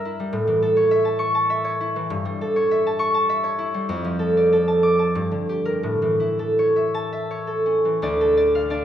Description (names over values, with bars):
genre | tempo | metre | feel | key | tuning
classical, solo harp piece | 81-107 BPM | 3/4 | rubato | unclear | A4 = 440 Hz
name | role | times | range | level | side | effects
concert harp | solo | 0.0-8.8 s | D2 to E6 | -18 LUFS | equal | none
room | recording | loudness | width
wet recital hall reverb, RT60 1.5 s | heard from further back in the room | -18 LUFS | side -10 dB against mid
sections
0.0-8.0 A section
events
none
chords
0.3 A; 2.1 A7/G; 3.9 Dm/F; 5.2 Gm; 5.8 A; 8.0 Dm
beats
| 0.33 0.91 1.50 | 2.11 2.70 3.29 | 3.89 4.52 5.15 | 5.84 6.58 7.29 | 8.01 8.70